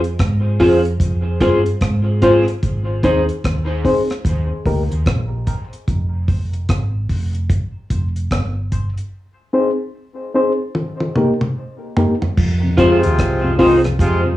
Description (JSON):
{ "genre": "dub reggae", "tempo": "74 BPM", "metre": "4/4", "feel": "swing 63% on 16ths", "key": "F minor", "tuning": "A4 = 440 Hz", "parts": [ { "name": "hollow-body short-scale fingered electric bass", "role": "bass", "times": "0.0-14.4 s", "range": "F1 to Ab2", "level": "-19 LUFS", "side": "equal", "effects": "none" }, { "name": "deep reggae drum kit", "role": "drums", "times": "0.0-14.2 s", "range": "crash cymbal, hi-hat, kick drum, rim click, toms", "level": "-20 LUFS", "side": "equal", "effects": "none" }, { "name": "electric guitar at the edge of break-up", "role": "accompaniment", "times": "0.6-3.2, 12.8-13.9 s", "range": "Eb4 to C5", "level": "-19 LUFS", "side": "right 1 dB", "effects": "lush chorus, high-pass filter, cassette tape, dub echo" }, { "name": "reed electric piano", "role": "stabs", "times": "0.6-13.8 s", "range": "Bb3 to C5", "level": "-19 LUFS", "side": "left 2 dB", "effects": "fast tremolo, high-pass filter, cassette tape, dub echo" }, { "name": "mellow tonewheel organ", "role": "accompaniment", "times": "12.6-14.3 s", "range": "F2 to F4", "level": "-23 LUFS", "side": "left 1 dB", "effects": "none" }, { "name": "warm horn section", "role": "second line", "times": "12.8-14.2 s", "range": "C3 to F4", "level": "-19 LUFS", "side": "equal", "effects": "cassette tape, dub echo" } ], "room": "moderate studio reverb, RT60 0.7 s", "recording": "home recording on cassette, studio reverb", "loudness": "-15 LUFS", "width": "side -15 dB against mid", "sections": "0.0-12.4 A section; 12.4-14.4 B section", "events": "break 2.6-12.4; filter sweep 2.6-9.1; drum fill 10.7-12.4", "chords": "0.0 Fm; 2.6 Ab; 4.3 Eb; 5.9 Fm; 9.1 Ab; 10.7 Eb; 12.4 Fm" }